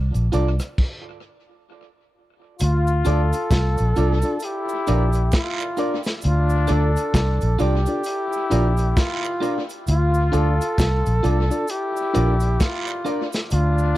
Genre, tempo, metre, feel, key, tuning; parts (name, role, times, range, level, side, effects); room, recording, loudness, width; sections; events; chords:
roots reggae; 66 BPM; 4/4; swing 60% on 16ths; D minor; A4 = 440 Hz
vintage muted fingered electric bass; bass; 0.0-13.9 s; Bb1 to D2; -19 LUFS; equal
crunchy breakbeat drum kit; drums; 0.1-13.8 s; crash cymbal, hi-hat, kick drum, rim click, snare drum; -24 LUFS; equal; tape echo
cabasa and guiro; percussion; 0.2-13.9 s; -35 LUFS; right 7 dB
electric guitar at the edge of break-up; accompaniment; 0.3-13.2 s; F4 to D5; -31 LUFS; right 8 dB; tape echo
mellow reed electric piano; stabs; 0.3-13.3 s; D4 to D5; -26 LUFS; left 2 dB; fast tremolo
breathy flugelhorn; melody; 2.6-14.0 s; F4 to A4; -26 LUFS; equal; tape echo
brilliant trombone; second line; 2.6-14.0 s; D4 to F4; -30 LUFS; left 6 dB; tape echo
studio ambience; dry, close 1970s-style studio recording; -18 LUFS; side -16 dB against mid
0.0-2.6 A section; 2.6-14.0 B section
stop 0.8-2.6
0.0 Dm; 0.8 N.C.; 2.6 Dm; 4.4 Bb; 6.2 Dm; 8.1 Bb; 9.9 Dm; 11.7 Bb